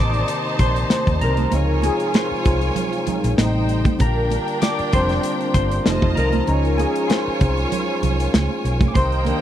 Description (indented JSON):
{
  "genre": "lush 1970s-style soul",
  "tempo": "97 BPM",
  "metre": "4/4",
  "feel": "swing 54% on 16ths",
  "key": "unclear",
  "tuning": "A4 = 439 Hz",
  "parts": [
    { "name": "clear studio string section", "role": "second line", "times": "0.0-9.4 s", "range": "D4 to A5", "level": "-26 LUFS", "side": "right 1 dB", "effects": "none" },
    { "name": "barky tine electric piano", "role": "accompaniment", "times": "0.0-9.4 s", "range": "C3 to Eb6", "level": "-23 LUFS", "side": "left 1 dB", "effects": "overdrive, ensemble chorus" },
    { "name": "mellow tonewheel organ", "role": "sustained chords", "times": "0.0-9.4 s", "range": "C3 to G4", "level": "-29 LUFS", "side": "equal", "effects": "stopped rotary speaker" },
    { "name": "hollow-body short-scale fingered electric bass", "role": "bass", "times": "0.0-9.3 s", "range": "F1 to Eb2", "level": "-21 LUFS", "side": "equal", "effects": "none" },
    { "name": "modern studio drum kit", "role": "drums", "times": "0.1-9.4 s", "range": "hi-hat, kick drum, snare drum", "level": "-20 LUFS", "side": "equal", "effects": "none" },
    { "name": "congas", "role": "percussion", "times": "0.9-9.4 s", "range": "none", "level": "-27 LUFS", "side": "right 9 dB", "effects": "none" },
    { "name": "warm horn section", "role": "stabs", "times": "8.9-9.4 s", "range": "Bb3 to Eb4", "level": "-28 LUFS", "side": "right 4 dB", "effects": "none" }
  ],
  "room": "little or no reverb",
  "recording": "dry, close 1970s-style studio recording",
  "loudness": "-17 LUFS",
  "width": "side -11 dB against mid",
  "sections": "0.0-9.4 A section",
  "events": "tine electric piano solo 0.0-9.4",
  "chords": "0.0 Cm7; 1.5 Dbmaj7; 3.4 Am7b5; 4.0 Bb6; 5.9 F7; 6.5 Dbmaj7",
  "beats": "0.29 0.91 | 1.53 2.14 2.76 3.38 | 4.00 4.62 5.24 5.85 | 6.47 7.09 7.71 8.33 | 8.95"
}